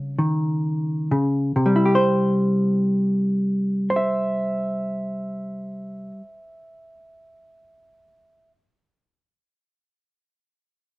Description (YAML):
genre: solo jazz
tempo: 43 BPM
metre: 4/4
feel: swing 68% on 8ths, rubato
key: C major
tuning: A4 = 440 Hz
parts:
  - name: hollow-body jazz guitar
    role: solo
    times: 0.0-8.5 s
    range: C3 to F5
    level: -20 LUFS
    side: equal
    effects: none
room: moderate studio reverb, RT60 0.6 s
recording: none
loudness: -19 LUFS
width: side -19 dB against mid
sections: 0.0-1.6 A section; 1.6-7.1 B section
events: slowing down 0.0-1.6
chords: 0.0 Dbadd9; 1.6 C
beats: 0.19 | 1.56 2.96 4.34 5.73